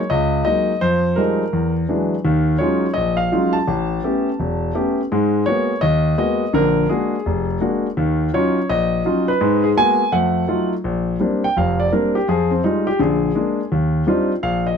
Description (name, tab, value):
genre	solo jazz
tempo	168 BPM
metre	4/4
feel	swing 65% on 8ths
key	Bb major from 10.8 s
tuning	A4 = 441 Hz
part	warm concert grand piano	solo	0.0-14.8 s	E1 to A5	-16 LUFS	left 1 dB	none
room	light reverb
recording	close, detailed microphones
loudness	-16 LUFS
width	side -6 dB against mid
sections	0.0-10.8 A section; 10.8-14.8 B section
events	grand piano solo 10.8-14.8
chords	0.0 F#69; 0.8 Fm9; 1.5 E9; 2.2 D#m11; 3.7 A9; 5.1 G#m9; 6.5 A#7b13; 8.0 D#m9; 9.4 G#m9; 10.1 F7b9; 10.8 Bb69; 12.3 Fm9; 13.0 Bb7; 13.7 Ebmaj13